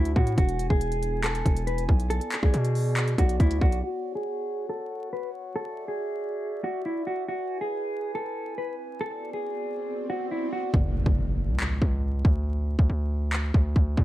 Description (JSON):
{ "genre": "hip hop, trap", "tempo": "139 BPM", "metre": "4/4", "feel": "half-time", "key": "F# minor", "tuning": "A4 = 440 Hz", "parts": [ { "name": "mellow electric guitar", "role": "melody", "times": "0.0-10.7 s", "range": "E4 to B4", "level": "-30 LUFS", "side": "equal", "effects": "low-pass filter, slapback echo" }, { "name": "glass harmonica", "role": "sustained chords", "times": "0.0-10.7 s", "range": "B3 to G#5", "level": "-37 LUFS", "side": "equal", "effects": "stereo widening, low-pass filter" }, { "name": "distorted 808-style bass", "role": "bass", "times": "0.0-3.8, 10.7-14.0 s", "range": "E1 to B2", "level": "-26 LUFS", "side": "equal", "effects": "distortion" }, { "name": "trap drum kit", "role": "drums", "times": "0.1-3.8, 10.7-14.0 s", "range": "handclaps, hi-hat, kick drum", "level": "-23 LUFS", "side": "equal", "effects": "none" }, { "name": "swell and impact", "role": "sound effects", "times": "9.8-12.5 s", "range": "none", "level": "-34 LUFS", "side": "equal", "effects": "none" } ], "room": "little or no reverb", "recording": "dark, warm production, vinyl crackle", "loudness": "-24 LUFS", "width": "side -15 dB against mid", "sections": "0.0-3.8 A section; 3.8-10.7 B section; 10.7-14.0 C section", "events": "filter sweep 3.8-10.7; swell 9.8-10.7; hi-hats muted 10.7-14.0; impact 10.7-12.5", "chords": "0.4 E; 2.1 Bm; 3.8 F#m; 5.6 Dadd9; 7.3 E; 9.0 Bm; 10.7 F#5; 12.5 D5" }